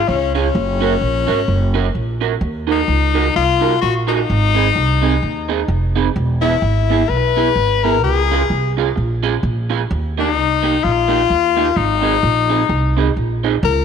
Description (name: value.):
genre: ska.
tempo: 128 BPM.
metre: 4/4.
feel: swing 58% on 8ths.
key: unclear.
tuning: A4 = 436 Hz.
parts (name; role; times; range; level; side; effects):
clear tenor saxophone; melody; 0.0-13.8 s; Db4 to B4; -18 LUFS; left 9 dB; slapback echo.
upright bass; bass; 0.1-13.8 s; E1 to Eb2; -18 LUFS; right 1 dB; none.
electric guitar through a small old amp; accompaniment; 0.3-13.5 s; Bb3 to Bb4; -21 LUFS; right 12 dB; lush chorus.
room: moderate plate reverb, RT60 2.7 s.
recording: 1960s-style stereo with parts hard left and right.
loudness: -14 LUFS.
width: side -7 dB against mid.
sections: 0.0-13.6 A section.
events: none.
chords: 0.0 Db; 0.5 Gb; 2.4 Ebm; 4.3 Ab; 6.2 E; 8.0 Db; 9.9 Eb; 11.8 Ab.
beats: 0.08 | 0.55 1.01 1.48 1.95 | 2.42 2.88 3.35 3.82 | 4.29 4.75 5.22 5.69 | 6.16 6.62 7.09 7.56 | 8.02 8.49 8.96 9.42 | 9.89 10.36 10.82 11.29 | 11.76 12.22 12.69 13.16 | 13.62.